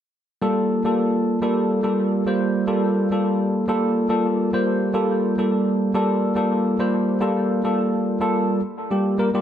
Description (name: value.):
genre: nu-disco.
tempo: 106 BPM.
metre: 4/4.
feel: swing 54% on 16ths.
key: G minor.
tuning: A4 = 440 Hz.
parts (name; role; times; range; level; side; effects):
bell-like tine electric piano; accompaniment; 0.4-9.4 s; G3 to C5; -19 LUFS; equal; lush chorus, analog delay.
room: moderate spring reverb, RT60 1.7 s, digital ambience.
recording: echo-heavy mix.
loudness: -19 LUFS.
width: side -9 dB against mid.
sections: 0.4-9.4 A section.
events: none.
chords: 0.4 Gm9.